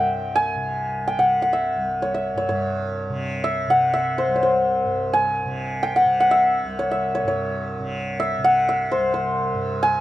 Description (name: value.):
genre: indian classical.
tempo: 126 BPM.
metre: 5/4.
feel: straight.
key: C raga puriya dhanashri.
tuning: A4 = 440 Hz.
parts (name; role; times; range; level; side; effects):
santur; melody; 0.0-10.0 s; C5 to Ab5; -20 LUFS; left 1 dB; none.
tanpura; drone; 0.0-10.0 s; C2 to C3; -29 LUFS; right 2 dB; none.
room: moderate small room reverb, RT60 0.6 s.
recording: dark, warm production.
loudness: -19 LUFS.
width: side -14 dB against mid.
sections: 0.0-2.5 A section; 2.5-10.0 B section.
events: speeding up 0.0-10.0.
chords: none.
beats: | 0.10 0.58 1.06 1.54 2.02 | 2.50 2.98 3.46 3.93 4.41 | 4.88 5.36 5.83 6.30 6.78 | 7.25 7.72 8.19 8.66 9.12 | 9.59.